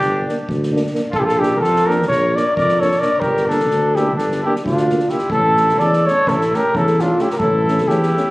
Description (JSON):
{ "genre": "balkan folk, Balkan brass band", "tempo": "258 BPM (eighths)", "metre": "9/8", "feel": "straight", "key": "unclear", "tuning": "A4 = 441 Hz", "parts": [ { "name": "dark trumpet", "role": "melody", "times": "0.0-8.3 s", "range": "F4 to D5", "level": "-16 LUFS", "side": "equal", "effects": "slapback echo" }, { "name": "clear flugelhorn", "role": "second line", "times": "0.0-8.3 s", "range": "D4 to Bb4", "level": "-25 LUFS", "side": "equal", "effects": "none" }, { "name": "mellow tuba", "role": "bass", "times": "0.0-8.1 s", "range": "G1 to F2", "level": "-20 LUFS", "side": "equal", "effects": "none" }, { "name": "soft-mallet drum kit", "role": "percussion", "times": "0.0-8.2 s", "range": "kick drum, snare drum", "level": "-30 LUFS", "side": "equal", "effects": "none" }, { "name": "mellow French horn", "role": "accompaniment", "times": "0.3-8.2 s", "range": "C#4 to D4", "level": "-27 LUFS", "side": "left 1 dB", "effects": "none" }, { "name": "mellow euphonium", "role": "accompaniment", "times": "0.3-8.2 s", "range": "A3 to Bb3", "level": "-26 LUFS", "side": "right 1 dB", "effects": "none" } ], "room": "light reverb", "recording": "recorded on a phone in the room, club reverb", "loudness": "-14 LUFS", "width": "side -20 dB against mid", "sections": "0.0-5.3 A section; 5.3-8.3 B section", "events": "none", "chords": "0.0 Gm; 1.1 Bb; 3.2 Gm; 5.3 A", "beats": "0.19 0.42 0.66 0.89 | 1.12 1.35 1.58 1.82 2.05 2.28 2.52 2.75 2.98 | 3.21 3.44 3.68 3.91 4.14 4.37 4.61 4.84 5.07 | 5.30 5.54 5.77 6.00 6.23 6.46 6.69 6.92 7.16 | 7.39 7.62 7.85 8.08" }